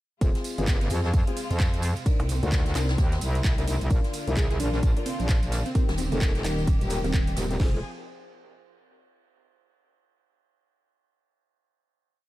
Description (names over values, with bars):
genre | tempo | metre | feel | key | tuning
bass house | 130 BPM | 4/4 | swing 60% on 16ths | F dorian | A4 = 436 Hz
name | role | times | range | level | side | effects
clear studio string section | sustained chords | 0.2-7.8 s | C3 to Ab4 | -38 LUFS | left 1 dB | sidechain pumping
dark baby grand piano | stabs | 0.2-7.8 s | C4 to C5 | -35 LUFS | left 4 dB | sidechain pumping, ping-pong delay
metallic wobble bass | bass | 0.2-7.8 s | Eb1 to F2 | -27 LUFS | equal | chorus, sidechain pumping
garage drum kit | drums | 0.2-7.6 s | handclaps, hi-hat, ride cymbal | -36 LUFS | right 1 dB | overdrive
house drum kit | drums | 0.2-7.7 s | crash cymbal, kick drum, snare drum | -24 LUFS | equal | none
jazz brush drum kit | drums | 0.2-7.5 s | hi-hat, ride cymbal, snare drum | -42 LUFS | equal | high-pass filter on cymbals, high-pass filter on hats, high-pass filter on snare, high-pass filter on room
tambourine | percussion | 0.2-7.6 s | none | -44 LUFS | right 6 dB | none
pulsing pluck wobble bass | bass | 2.2-3.0, 5.9-7.4 s | Eb1 to C2 | -26 LUFS | equal | chorus, tube saturation, sidechain pumping
plucky unison lead | melody | 4.4-7.6 s | C4 to Ab4 | -35 LUFS | right 1 dB | ping-pong delay
room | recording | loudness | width
small room ambience | dark, warm production | -23 LUFS | side -16 dB against mid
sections
0.2-7.6 drop; 7.6-9.4 final chord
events
drop 0.2-7.6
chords
0.2 Fm; 2.1 Cm7; 3.9 Bb; 5.8 Eb; 7.6 Fm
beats
| 0.21 0.68 1.14 1.60 | 2.06 2.52 2.98 3.44 | 3.91 4.37 4.83 5.29 | 5.75 6.21 6.67 7.14 | 7.60